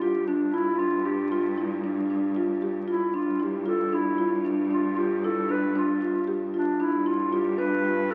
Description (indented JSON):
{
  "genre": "contemporary instrumental, chamber music in an uneven meter",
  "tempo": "230 BPM (eighths)",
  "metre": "7/8",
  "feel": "straight",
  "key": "G mixolydian",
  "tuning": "A4 = 440 Hz",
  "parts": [
    { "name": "dark clarinet", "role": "melody", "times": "0.0-8.1 s", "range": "D4 to B4", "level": "-31 LUFS", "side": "equal", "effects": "none" },
    { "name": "marimba with soft mallets", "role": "arpeggios", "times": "0.0-8.1 s", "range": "D4 to G4", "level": "-28 LUFS", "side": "equal", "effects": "none" },
    { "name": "rich cello", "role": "bass", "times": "0.0-8.1 s", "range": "G2", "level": "-36 LUFS", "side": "equal", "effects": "none" }
  ],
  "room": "wet recital hall reverb, RT60 1.8 s",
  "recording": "very old 78 rpm record, vinyl crackle",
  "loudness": "-26 LUFS",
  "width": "mono",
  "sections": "0.0-8.1 A section",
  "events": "none",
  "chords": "0.0 G7(no3)"
}